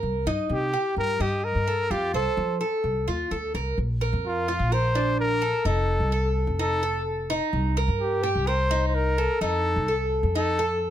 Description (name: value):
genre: latin, Cuban son and guajira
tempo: 128 BPM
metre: 4/4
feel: straight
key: Bb major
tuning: A4 = 440 Hz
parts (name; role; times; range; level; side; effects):
- Cuban tres; arpeggios; 0.0-10.9 s; D4 to Eb5; -28 LUFS; right 2 dB; none
- upright bass; bass; 0.0-10.9 s; F1 to F3; -27 LUFS; equal; none
- breathy trumpet; melody; 0.5-10.8 s; F4 to C5; -26 LUFS; left 1 dB; none
room: little or no reverb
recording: close, detailed microphones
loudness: -22 LUFS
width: side -11 dB against mid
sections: 0.0-3.8 A section; 3.8-10.9 B section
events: none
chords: 0.0 Cm7; 1.9 F; 3.8 Bb; 5.7 F7; 7.5 Cm7; 9.4 F7